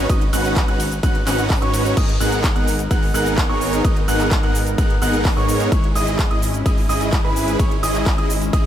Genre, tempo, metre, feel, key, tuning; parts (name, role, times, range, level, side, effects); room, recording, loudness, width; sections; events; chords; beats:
EDM, festival progressive house; 128 BPM; 4/4; straight; G# minor; A4 = 438 Hz
dark concert grand piano; arpeggios; 0.0-8.7 s; B5 to F#6; -27 LUFS; right 1 dB; vintage 12-bit sampler grit, sidechain pumping, tape echo
supersaw chords; riff; 0.0-8.7 s; B3 to F#5; -22 LUFS; right 1 dB; sidechain pumping, tape echo
fat analog bass; bass; 0.0-8.7 s; G#1 to G#2; -25 LUFS; equal; sidechain pumping
big-room dance drum kit; drums; 0.1-8.6 s; crash cymbal, handclaps, hi-hat, ride cymbal, shaker; -27 LUFS; equal
electronic kick drum; drums; 0.1-8.6 s; -19 LUFS; equal
lush unison pad; sustained chords; 2.0-8.7 s; G#3 to A#4; -27 LUFS; left 1 dB; chorus, sidechain pumping
little or no reverb; -16 LUFS; side -10 dB against mid
0.0-2.0 A section; 2.0-8.7 A section
drop 0.0-2.0, 2.0-8.7
0.0 Badd9/G#; 2.0 G#madd9; 5.7 C#m/G#
| 0.10 0.56 1.03 1.50 | 1.97 2.44 2.91 3.38 | 3.85 4.31 4.78 5.25 | 5.72 6.19 6.66 7.13 | 7.60 8.06 8.53